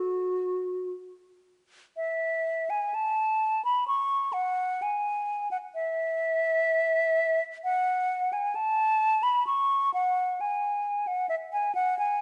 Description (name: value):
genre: classical, baroque-style fantasia for unaccompanied flute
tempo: 64 BPM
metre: 3/4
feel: uneven beats, rubato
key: unclear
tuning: A4 = 437 Hz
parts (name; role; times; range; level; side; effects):
- hollow concert flute; solo; 0.0-12.2 s; F#4 to C#6; -28 LUFS; equal; none
room: moderate recital hall reverb, RT60 1.7 s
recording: nothing above 10.6 kHz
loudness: -28 LUFS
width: mono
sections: 0.0-2.0 A section; 2.0-12.2 A section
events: none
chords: none